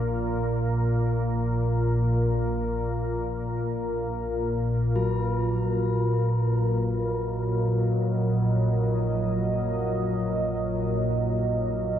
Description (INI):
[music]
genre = dark ambient drone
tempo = free time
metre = none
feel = none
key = unclear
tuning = A4 = 440 Hz
[part]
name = deep dark ambient pad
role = sustained chords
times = 0.0-12.0 s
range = Gb3 to Eb5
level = -28 LUFS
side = equal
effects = chorus, built-in reverb
[part]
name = organ-like drone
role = drone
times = 0.0-12.0 s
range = Bb1 to Bb2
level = -25 LUFS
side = equal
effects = ensemble chorus, built-in reverb
[part]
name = bronze singing bowl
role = texture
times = 5.0-12.0 s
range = Gb3 to Gb4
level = -34 LUFS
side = left 3 dB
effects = none
[sound]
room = wet huge ambient reverb, RT60 8.2 s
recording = dreamy mix soaked in reverb, cassette tape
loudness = -23 LUFS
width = side -10 dB against mid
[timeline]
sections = 0.0-12.0 A section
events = filter sweep on synth drone 0.0-12.0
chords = 0.0 Bb; 5.0 Gb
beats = free time